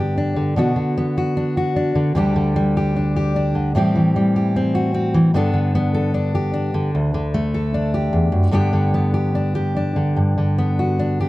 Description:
folk, solo fingerstyle acoustic guitar; 75 BPM; 4/4; rubato; D mixolydian; A4 = 440 Hz
fingerpicked steel-string acoustic guitar; solo; 0.0-11.3 s; D2 to A4; -17 LUFS; equal
little or no reverb; close, detailed microphones; -17 LUFS; side -18 dB against mid
0.0-11.3 A section
0.0 G; 0.6 Bm; 2.2 Dsus4; 3.8 Am7; 5.3 Gadd9; 6.9 D5; 8.5 G

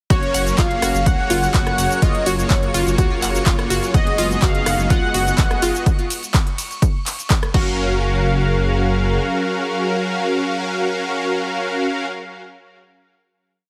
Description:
progressive house; 125 BPM; 4/4; straight; F# major; A4 = 440 Hz
warm velvety synth lead; melody; 0.1-5.8 s; C#5 to F#5; -25 LUFS; equal; chorus, sidechain pumping, digital delay
warm analog pad; sustained chords; 0.1-12.1 s; F#3 to E#5; -30 LUFS; equal; chorus, sidechain pumping
analog pluck; arpeggios; 0.1-8.0 s; E#4 to F#5; -27 LUFS; equal; chorus, sidechain pumping, digital delay
soft supersaw; stabs; 0.1-12.1 s; A#3 to E#5; -25 LUFS; equal; ensemble chorus, sidechain pumping, digital delay
dark detuned saw bass; bass; 0.1-9.2 s; F#1 to C#2; -25 LUFS; equal; sidechain pumping
big-room dance drum kit; drums; 0.1-7.6 s; cabasa, crash cymbal, handclaps, hi-hat, ride cymbal, rim click; -27 LUFS; equal
electronic kick drum; drums; 0.1-7.6 s; -19 LUFS; equal
twinkling granular texture; texture; 0.8-7.8 s; C#6; -38 LUFS; equal; built-in reverb, sidechain pumping
light reverb, digital ambience; heavily compressed radio sound; -19 LUFS; mono
0.1-7.8 drop; 7.8-11.6 final hit
drop 0.1-7.8
0.1 F#maj7; 3.9 B6/F#; 7.5 F#maj7

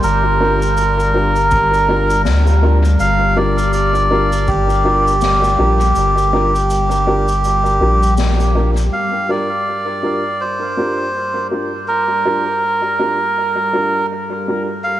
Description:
ambient dub; 81 BPM; 4/4; swing 59% on 16ths; G minor; A4 = 440 Hz
melodica; melody; 0.0-15.0 s; G4 to F5; -16 LUFS; right 1 dB; dub echo
deep dark ambient pad; sustained chords; 0.0-15.0 s; G3 to A5; -25 LUFS; left 1 dB; chorus, built-in reverb, cassette tape
soft dub sub bass; bass; 0.0-8.9 s; G1 to D2; -16 LUFS; equal
cabasa and snare drum; drums; 0.0-8.9 s; -28 LUFS; left 3 dB; studio reverb, cassette tape, dub echo
dark upright piano; stabs; 0.4-14.7 s; D4 to Bb4; -22 LUFS; equal; cassette tape, dub echo
electronic kick drum; drums; 1.5-4.7 s; -22 LUFS; equal; studio reverb, cassette tape
light reverb, small room ambience; home recording on cassette; -13 LUFS; side -13 dB against mid
0.0-8.9 A section; 8.9-15.0 B section
kick drops out 7.4-8.9; band accent 8.2-8.6
0.0 Gm7

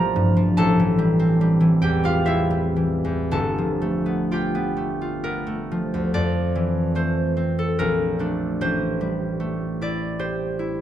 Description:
classical, solo harp piece; 55-79 BPM; 3/4; rubato; A4 = 441 Hz
concert harp; solo; 0.0-10.8 s; G1 to D6; -20 LUFS; equal
wet recital hall reverb, RT60 1.4 s; close, detailed microphones; -20 LUFS; side -11 dB against mid
0.0-6.1 A section; 6.1-10.8 B section
0.0 Gm7/A; 0.6 Am7; 3.3 G9; 6.1 Fmaj7; 7.8 Bbmaj7; 8.6 Am7

